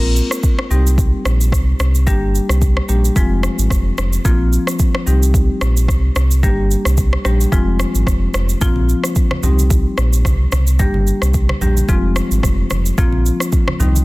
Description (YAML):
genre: afrobeats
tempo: 110 BPM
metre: 4/4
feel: swing 55% on 16ths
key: F dorian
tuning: A4 = 440 Hz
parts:
  - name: marimba with medium mallets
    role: accompaniment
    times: 0.0-14.0 s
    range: Eb3 to Bb4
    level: -21 LUFS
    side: left 2 dB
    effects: none
  - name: sub bass with octave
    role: bass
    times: 0.0-14.0 s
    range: F1 to C2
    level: -15 LUFS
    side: equal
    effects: none
  - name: afro-pop drum kit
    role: drums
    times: 0.2-14.0 s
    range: kick drum, rim click, shaker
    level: -18 LUFS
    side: equal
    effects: none
  - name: congas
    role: percussion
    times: 8.6-14.0 s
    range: none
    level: -25 LUFS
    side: right 3 dB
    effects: none
room: little or no reverb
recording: dense, heavily limited modern master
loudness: -13 LUFS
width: side -21 dB against mid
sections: 0.0-14.0 A section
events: none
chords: 0.0 Bbsus2; 0.7 Cm; 2.1 Gm; 3.2 Fm; 4.3 Bbsus2; 5.1 Cm; 6.4 Gm; 7.5 Fm; 8.6 Bbsus2; 9.4 Cm; 10.8 Gm; 11.9 Fm; 13.0 Bbsus2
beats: 0.43 0.98 1.52 | 2.07 2.62 3.16 3.71 | 4.25 4.80 5.34 5.89 | 6.43 6.98 7.52 8.07 | 8.62 9.16 9.71 10.25 | 10.80 11.34 11.89 12.43 | 12.98 13.52